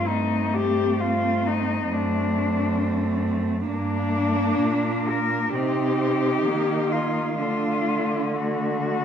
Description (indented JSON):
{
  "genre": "classical, lyrical piece for cello ensemble",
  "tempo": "66 BPM",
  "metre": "4/4",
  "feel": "rubato",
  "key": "unclear",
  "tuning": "A4 = 440 Hz",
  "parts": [
    { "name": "warm cello", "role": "melody", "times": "0.0-9.0 s", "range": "D4 to Bb4", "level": "-26 LUFS", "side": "left 5 dB", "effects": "none" },
    { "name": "warm cello", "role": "second line", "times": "0.0-9.0 s", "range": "A3 to Eb4", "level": "-28 LUFS", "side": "right 7 dB", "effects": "none" },
    { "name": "warm cello", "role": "accompaniment", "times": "0.0-9.0 s", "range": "A3 to C4", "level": "-27 LUFS", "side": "left 2 dB", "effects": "none" },
    { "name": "rich cello", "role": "bass", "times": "0.0-9.0 s", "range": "F#2 to Eb3", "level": "-28 LUFS", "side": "right 2 dB", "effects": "none" }
  ],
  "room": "moderate scoring stage reverb, RT60 1.5 s",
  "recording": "minimal, uncompressed stereo recording",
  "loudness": "-21 LUFS",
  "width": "side -8 dB against mid",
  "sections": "0.0-9.0 A section",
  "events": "none",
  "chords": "0.1 F9/G; 1.9 D7/F#; 3.7 Gm; 5.5 Cm; 7.4 D"
}